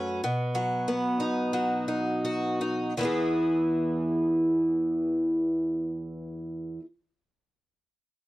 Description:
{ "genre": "folk, solo fingerstyle acoustic guitar", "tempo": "82-97 BPM", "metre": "4/4", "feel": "rubato", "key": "E major", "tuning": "A4 = 438 Hz", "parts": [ { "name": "picked twelve-string acoustic guitar", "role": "solo", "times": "0.0-6.9 s", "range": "E2 to B4", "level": "-25 LUFS", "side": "equal", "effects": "none" } ], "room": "light reverb", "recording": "dry, close 1970s-style studio recording", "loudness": "-25 LUFS", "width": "side -17 dB against mid", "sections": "0.0-3.0 A section; 3.0-5.8 B section", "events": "slowing down 0.0-3.0", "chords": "0.2 B; 3.0 E" }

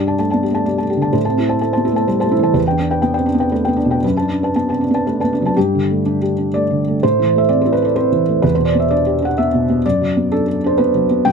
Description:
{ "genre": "neoclassical minimalist piano", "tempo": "127 BPM", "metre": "3/4", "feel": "rubato", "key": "G major", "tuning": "A4 = 440 Hz", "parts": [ { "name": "felt-muted upright piano", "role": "solo", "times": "0.0-11.3 s", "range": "E2 to A5", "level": "-14 LUFS", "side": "equal", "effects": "none" } ], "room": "little or no reverb", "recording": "close, detailed microphones", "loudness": "-14 LUFS", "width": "side -6 dB against mid", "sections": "0.0-5.6 A section; 5.6-11.3 B section", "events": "none", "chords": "0.0 Gsus2; 1.2 Am; 2.6 Em7; 4.0 D6/F#; 5.6 Gsus2; 7.0 Am; 8.4 Em7; 9.8 D6/F#" }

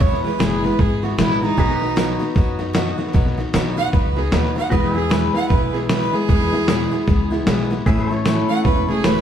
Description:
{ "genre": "honky-tonk and classic country", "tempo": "153 BPM", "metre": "4/4", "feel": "swing 60% on 8ths", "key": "E major", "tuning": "A4 = 438 Hz", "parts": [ { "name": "clear fiddle", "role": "second line", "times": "0.0-9.2 s", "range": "D#4 to F#5", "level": "-23 LUFS", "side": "right 4 dB", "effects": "none" }, { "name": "picked steel-string acoustic guitar", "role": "accompaniment", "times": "0.0-9.2 s", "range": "E2 to F#4", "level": "-21 LUFS", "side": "left 2 dB", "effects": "none" }, { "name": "pedal steel guitar", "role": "sustained chords", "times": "0.0-9.2 s", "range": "F#4 to E5", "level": "-31 LUFS", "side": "left 2 dB", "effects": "none" }, { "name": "upright bass", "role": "bass", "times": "0.0-9.2 s", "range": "E1 to F#2", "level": "-24 LUFS", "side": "equal", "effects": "none" }, { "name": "trip hop sampler-style drum kit", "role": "drums", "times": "0.0-9.2 s", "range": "hi-hat, kick drum, snare drum", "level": "-20 LUFS", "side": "equal", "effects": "none" } ], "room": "wet studio reverb, RT60 0.9 s", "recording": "heard from further back in the room", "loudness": "-16 LUFS", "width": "side -9 dB against mid", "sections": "0.0-9.2 A section", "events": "fiddle solo 0.0-9.2", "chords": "0.0 E; 1.6 B; 4.7 E; 7.9 A" }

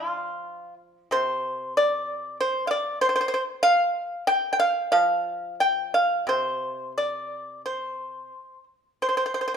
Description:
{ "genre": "chinese traditional, Chinese solo plucked strings", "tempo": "86-96 BPM", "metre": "4/4", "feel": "rubato", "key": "unclear", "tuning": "A4 = 440 Hz", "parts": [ { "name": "pipa", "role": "solo", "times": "0.0-9.6 s", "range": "C3 to G5", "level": "-23 LUFS", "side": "equal", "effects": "none" } ], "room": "moderate recital hall reverb, RT60 1.3 s", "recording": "minimal, uncompressed stereo recording", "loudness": "-22 LUFS", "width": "side -7 dB against mid", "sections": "0.0-9.6 A section", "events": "none", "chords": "none" }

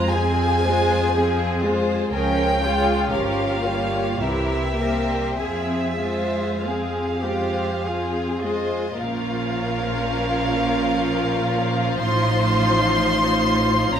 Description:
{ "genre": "classical, slow romantic movement for string orchestra", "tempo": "48-63 BPM", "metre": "3/4", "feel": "rubato", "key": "F minor, Bb minor from 9.0 s", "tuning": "A4 = 441 Hz", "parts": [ { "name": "rich chamber violin section", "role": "melody", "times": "0.0-14.0 s", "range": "Eb5 to C6", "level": "-25 LUFS", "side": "left 1 dB", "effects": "none" }, { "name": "rich chamber violin section", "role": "second line", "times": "0.0-14.0 s", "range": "E4 to Db5", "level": "-26 LUFS", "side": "left 2 dB", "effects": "none" }, { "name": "rich chamber viola section", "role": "accompaniment", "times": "0.0-14.0 s", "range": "E3 to F4", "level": "-25 LUFS", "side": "right 1 dB", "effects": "none" }, { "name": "rich chamber cello section", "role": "bass", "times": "0.0-14.0 s", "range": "A2 to Bb4", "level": "-27 LUFS", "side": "right 1 dB", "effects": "none" }, { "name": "warm chamber double bass section", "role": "bass", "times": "0.0-14.0 s", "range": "G1 to F2", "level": "-27 LUFS", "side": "right 1 dB", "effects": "none" } ], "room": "wet recital hall reverb, RT60 1.4 s", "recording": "none", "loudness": "-19 LUFS", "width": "side -8 dB against mid", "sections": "0.0-9.0 A section; 9.0-14.0 B section", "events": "none", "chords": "0.0 Fm; 2.1 Db; 3.1 Gm7b5; 4.2 C7; 5.4 Fm; 9.0 Bbm; 12.0 F7/A" }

